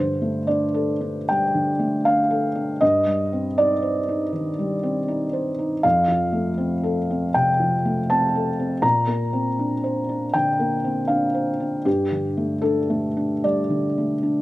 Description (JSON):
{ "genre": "neoclassical minimalist piano", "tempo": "79 BPM", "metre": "4/4", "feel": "rubato", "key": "G minor", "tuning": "A4 = 440 Hz", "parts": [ { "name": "felt-muted upright piano", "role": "solo", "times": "0.0-14.4 s", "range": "F2 to Bb5", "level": "-19 LUFS", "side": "equal", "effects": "none" } ], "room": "light reverb", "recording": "recorded outdoors, with no room sound", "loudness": "-19 LUFS", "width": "side -17 dB against mid", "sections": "0.0-14.4 A section", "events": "none", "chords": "0.0 Gsus2; 2.8 Cmadd9/G; 5.8 F; 8.8 Bbadd9; 11.9 Gsus2", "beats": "0.47 1.27 2.05 | 2.81 3.58 4.33 5.09 | 5.84 6.58 7.33 8.08 | 8.83 9.59 10.34 11.10 | 11.86 12.63 13.43 14.22" }